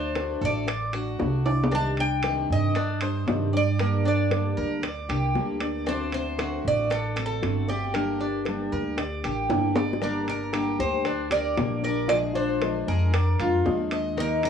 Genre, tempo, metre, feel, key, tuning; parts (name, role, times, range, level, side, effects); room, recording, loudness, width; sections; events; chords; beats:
latin, Cuban son and guajira; 116 BPM; 4/4; straight; G minor; A4 = 445 Hz
Cuban tres; melody; 0.0-14.5 s; G4 to A5; -29 LUFS; right 1 dB
picked steel-string acoustic guitar; accompaniment; 0.0-14.5 s; C3 to G4; -30 LUFS; left 2 dB
Cuban tres; arpeggios; 0.0-14.5 s; D4 to Eb5; -32 LUFS; right 1 dB
upright bass; bass; 0.0-14.5 s; G1 to G2; -28 LUFS; right 1 dB
bongos; percussion; 0.2-14.5 s; -34 LUFS; left 4 dB
timbales; percussion; 0.2-14.5 s; -31 LUFS; right 1 dB
nylon-string guitar; second line; 10.0-14.5 s; D4 to G4; -33 LUFS; left 7 dB
moderate large studio reverb, RT60 0.9 s; worn, warbling old tape, cassette tape, warbly pitch drift; -23 LUFS; side -7 dB against mid
0.0-10.0 A section; 10.0-14.5 A section
drum fill 1.5, 9.5-10.0
0.0 D; 1.7 Cmadd9; 3.8 Gm; 5.9 D7; 7.9 Gm; 12.1 Bb7
0.16 0.68 1.19 | 1.71 2.23 2.75 3.27 | 3.79 4.31 4.83 5.35 | 5.87 6.39 6.91 7.42 | 7.94 8.46 8.98 9.50 | 10.02 10.54 11.06 11.58 | 12.10 12.62 13.14 13.66 | 14.18